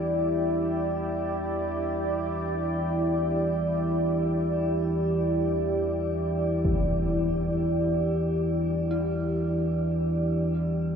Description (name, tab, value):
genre	dark ambient drone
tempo	free time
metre	none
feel	none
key	E minor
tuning	A4 = 440 Hz
part	deep dark ambient pad	sustained chords	0.0-11.0 s	E4 to D5	-27 LUFS	right 1 dB	chorus, built-in reverb, shimmer reverb
part	dark detuned synth bell	arpeggios	0.0-11.0 s	E4 to G4	-41 LUFS	left 5 dB	chorus, phaser, diffuse ambient delay, shimmer reverb
part	deep rumbling drone	drone	0.0-11.0 s	E2 to E3	-28 LUFS	equal	built-in reverb
part	impact	percussion	6.6-6.9 s	none	-30 LUFS	equal	low-pass filter on sfx
room	wet huge ambient reverb, RT60 8.3 s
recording	dreamy mix soaked in reverb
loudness	-24 LUFS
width	side -7 dB against mid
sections	0.0-11.0 A section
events	fade-in on synth drone 0.0-11.0; fade-in on impacts and reversed cymbals 0.0-11.0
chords	0.0 Em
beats	free time